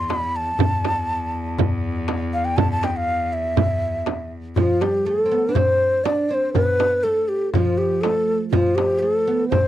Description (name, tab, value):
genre	Arabic maqam ensemble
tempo	121 BPM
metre	4/4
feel	straight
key	E maqam kurd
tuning	A4 = 440 Hz
part	breathy mellow ney	melody	0.0-9.7 s	F4 to C6	-20 LUFS	equal	none
part	clear cello	drone	0.0-4.6 s	E2	-28 LUFS	left 1 dB	none
part	darbuka	percussion	0.1-9.7 s	none	-24 LUFS	left 2 dB	none
part	frame drum	percussion	0.1-9.6 s	none	-24 LUFS	right 10 dB	none
part	oud	second line	4.6-9.7 s	F3 to D4	-25 LUFS	right 3 dB	none
room	little or no reverb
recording	dry, close 1970s-style studio recording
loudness	-18 LUFS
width	side -12 dB against mid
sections	0.0-4.6 A section; 4.6-9.7 B section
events	none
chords	none